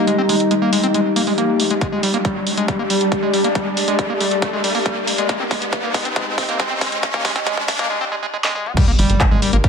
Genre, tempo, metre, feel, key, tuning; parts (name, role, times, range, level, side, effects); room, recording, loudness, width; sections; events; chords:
psychedelic trance; 138 BPM; 4/4; straight; G phrygian; A4 = 440 Hz
overtone-sweeping drone; sustained chords; 0.0-9.7 s; G3 to Bb4; -23 LUFS; left 1 dB; chorus, built-in reverb, sidechain pumping
overdriven acid bass; riff; 0.0-9.7 s; G3 to C4; -22 LUFS; moving between left 4 dB and right 3 dB; distortion, auto-pan, sidechain pumping, tape echo
riser and impact; sound effects; 0.0-9.7 s; -24 LUFS; equal
warbly tape-like pad; texture; 0.0-9.7 s; D4 to Eb5; -25 LUFS; left 2 dB; chorus, built-in reverb, sidechain pumping
drum and bass drum kit; drums; 0.1-9.7 s; crash cymbal, handclaps, hi-hat, snare drum, toms; -23 LUFS; right 1 dB
electronic kick drum; drums; 1.8-9.7 s; -19 LUFS; equal
plucky analog bass; bass; 9.0-9.6 s; G1 to Ab1; -17 LUFS; equal
moderate digital room reverb, RT60 0.9 s; high-pass filter; -16 LUFS; side -6 dB against mid
0.0-8.8 A section
build-up 0.0-8.8; riser 0.0-7.9; filter sweep on acid bass 0.0-8.8; filter sweep on synth drone 0.0-8.8; filter sweep 0.0-8.8; drum fill 1.8-7.9, 8.3-8.8; impact 8.8-9.7
0.0 Ab5; 1.8 G5; 5.3 Ab5; 8.8 G5